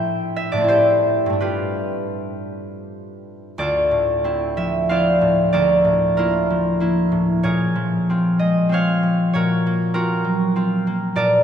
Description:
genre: classical, solo harp piece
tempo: 80-101 BPM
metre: 3/4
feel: rubato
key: D minor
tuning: A4 = 441 Hz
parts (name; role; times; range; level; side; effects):
- concert harp; solo; 0.0-11.4 s; D2 to A5; -17 LUFS; equal; none
room: wet church reverb, RT60 3.4 s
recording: recorded in a church or concert hall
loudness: -17 LUFS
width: side -8 dB against mid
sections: 0.0-3.6 A section; 3.6-11.4 B section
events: none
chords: 0.0 Am7; 1.4 G9; 3.6 Dm9; 5.5 Bbmaj7#11/D; 7.5 Bbm9; 9.3 F#maj7#11/A#

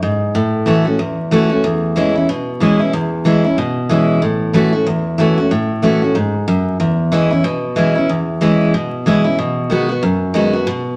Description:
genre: rock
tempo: 186 BPM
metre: 4/4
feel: swing 59% on 8ths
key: E major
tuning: A4 = 439 Hz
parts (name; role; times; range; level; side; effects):
- picked steel-string acoustic guitar; solo; 0.0-11.0 s; E2 to F#4; -16 LUFS; equal; none
room: wet large studio reverb, RT60 1.1 s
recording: vinyl crackle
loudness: -16 LUFS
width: mono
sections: 0.0-11.0 A section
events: none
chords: 0.3 A6; 1.6 E6; 4.2 A6; 6.8 E6; 9.4 B6

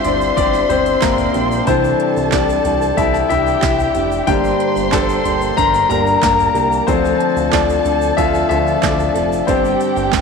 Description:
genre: piano-driven pop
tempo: 92 BPM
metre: 4/4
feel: straight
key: unclear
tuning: A4 = 438 Hz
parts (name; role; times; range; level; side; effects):
- dark studio violin section; second line; 0.0-10.2 s; G4 to C6; -22 LUFS; right 2 dB; tape echo
- warm concert grand piano; accompaniment; 0.0-10.2 s; E3 to Bb5; -16 LUFS; left 9 dB; none
- fingerpicked plugged-in steel-string acoustic guitar; riff; 0.0-10.2 s; G2 to A4; -22 LUFS; right 15 dB; none
- fat analog bass; bass; 0.0-10.2 s; F1 to D2; -23 LUFS; right 2 dB; none
- deep house drum kit; drums; 0.0-10.2 s; handclaps, hi-hat, kick drum, snare drum, toms; -22 LUFS; right 6 dB; none
- tube shaker; percussion; 0.0-10.2 s; none; -39 LUFS; left 11 dB; none
room: moderate echo chamber reverb, RT60 2.2 s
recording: 1960s-style stereo with parts hard left and right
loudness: -13 LUFS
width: side -5 dB against mid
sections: 0.0-10.2 A section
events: grand piano solo 0.0-10.2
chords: 0.0 Gsus4; 1.7 Cadd9; 4.3 Gm; 6.9 Dm; 9.5 Gsus4

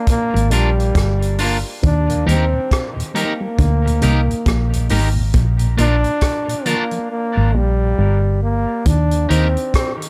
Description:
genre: dub reggae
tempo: 68 BPM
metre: 4/4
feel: swing 61% on 16ths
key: Eb major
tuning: A4 = 440 Hz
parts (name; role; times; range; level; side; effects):
- warm trombone; melody; 0.0-9.9 s; G3 to D4; -24 LUFS; equal; dub echo
- vintage drum kit; drums; 0.1-10.1 s; hi-hat, kick drum, rim click; -23 LUFS; equal; none
- electric guitar at the edge of break-up; accompaniment; 0.3-9.5 s; D4 to Bb4; -28 LUFS; equal; dub echo
- electric guitar with an envelope filter; riff; 0.3-9.5 s; G2 to Eb3; -28 LUFS; equal; none
- vintage muted fingered electric bass; bass; 0.3-9.6 s; G1 to Eb2; -19 LUFS; equal; none
- mellow tonewheel organ; accompaniment; 2.1-7.0 s; Eb2 to Bb3; -28 LUFS; equal; chorus vibrato
room: light reverb, studio reverb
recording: none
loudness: -17 LUFS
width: mono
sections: 0.0-10.1 A section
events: break 0.0-1.8; drums muted 7.1-8.9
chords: 0.0 Bb; 1.8 Eb; 5.3 Bb; 8.9 Eb

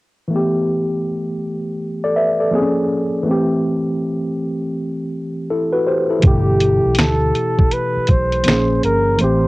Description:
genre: lo-fi hip hop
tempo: 81 BPM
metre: 4/4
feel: swing 65% on 16ths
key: unclear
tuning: A4 = 440 Hz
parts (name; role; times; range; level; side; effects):
- tine electric piano; accompaniment; 0.3-9.5 s; B2 to E5; -18 LUFS; equal; medium stereo tremolo, cassette tape, low-pass filter
- vintage muted fingered electric bass; bass; 6.2-9.5 s; G1 to D2; -20 LUFS; equal; none
- lo-fi sampler-style drum kit; drums; 6.2-9.4 s; finger snaps, hi-hat, kick drum, snare drum; -15 LUFS; equal; none
- breathy flugelhorn; melody; 6.3-9.5 s; G4 to C5; -19 LUFS; equal; low-pass filter, cassette tape
room: moderate booth ambience, RT60 0.2 s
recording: home recording on cassette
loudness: -15 LUFS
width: side -20 dB against mid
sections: 0.3-6.2 A section; 6.2-9.5 B section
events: none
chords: 0.3 G69; 2.5 Bbm7; 3.3 Am7; 6.2 G69; 8.5 Bbm7

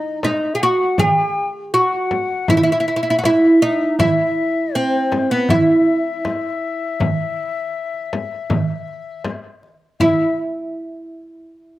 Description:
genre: Arabic maqam ensemble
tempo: 80 BPM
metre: 4/4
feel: straight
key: E maqam suznak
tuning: A4 = 440 Hz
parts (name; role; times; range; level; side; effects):
- oud; melody; 0.0-10.4 s; B3 to G#4-50c; -16 LUFS; right 1 dB; slapback echo
- breathy ney; second line; 0.0-10.4 s; B4 to G5+47c; -24 LUFS; left 7 dB; slapback echo
- darbuka; percussion; 0.2-10.4 s; none; -25 LUFS; right 3 dB; none
- frame drum; percussion; 0.2-10.3 s; none; -22 LUFS; left 2 dB; none
room: little or no reverb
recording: recorded outdoors, with no room sound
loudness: -16 LUFS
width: side -15 dB against mid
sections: 0.0-10.0 A section; 10.0-11.8 B section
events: none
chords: none

